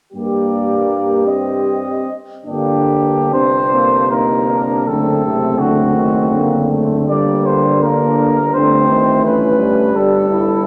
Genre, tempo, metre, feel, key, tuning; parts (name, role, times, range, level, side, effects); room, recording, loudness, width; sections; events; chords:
classical, hymn-like piece for brass band; 66-86 BPM; 3/4; rubato; G minor; A4 = 440 Hz
mellow cornet; melody; 0.1-10.6 s; F#4 to Eb5; -20 LUFS; equal
warm French horn section; second line; 0.1-10.7 s; Bb3 to G4; -24 LUFS; equal
clear trombone; accompaniment; 0.1-10.4 s; C3 to G3; -21 LUFS; equal
warm trombone section; accompaniment; 0.1-10.7 s; G3 to C4; -22 LUFS; equal
warm tuba; bass; 0.1-10.7 s; F#1 to G2; -26 LUFS; equal
wet recital hall reverb, RT60 1.8 s; -15 LUFS; mono
0.1-2.5 A section; 2.5-10.7 B section
0.1 Gm; 1.2 Cm/G; 2.5 Gm; 4.9 D7/F#; 7.1 Gm; 9.2 A7/G